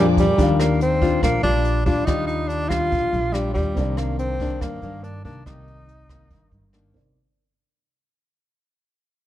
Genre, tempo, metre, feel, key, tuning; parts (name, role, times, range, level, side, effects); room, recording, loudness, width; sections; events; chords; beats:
bossa nova; 142 BPM; 4/4; straight; Eb major; A4 = 439 Hz
breathy tenor saxophone; melody; 0.0-6.7 s; G3 to F4; -23 LUFS; equal
dark baby grand piano; accompaniment; 0.0-7.2 s; C4 to F5; -29 LUFS; right 5 dB
nylon-string guitar; accompaniment; 0.0-7.1 s; G2 to F4; -23 LUFS; left 4 dB
upright bass; bass; 0.0-7.1 s; Bb1 to G2; -26 LUFS; right 1 dB
jazz brush drum kit; drums; 0.2-7.0 s; hi-hat, kick drum, rim click; -26 LUFS; right 1 dB
moderate concert hall reverb, RT60 1.8 s; dark, warm production, faint mains hum; -18 LUFS; side -12 dB against mid
0.4-7.1 A section
grand piano fill 0.0-0.4; fade-out 0.4-7.1
0.4 Ebmaj9; 3.8 Cm9
| 0.38 0.80 1.22 1.65 | 2.07 2.49 2.91 3.34 | 3.76 4.18 4.61 5.03 | 5.45 5.88 6.30 6.72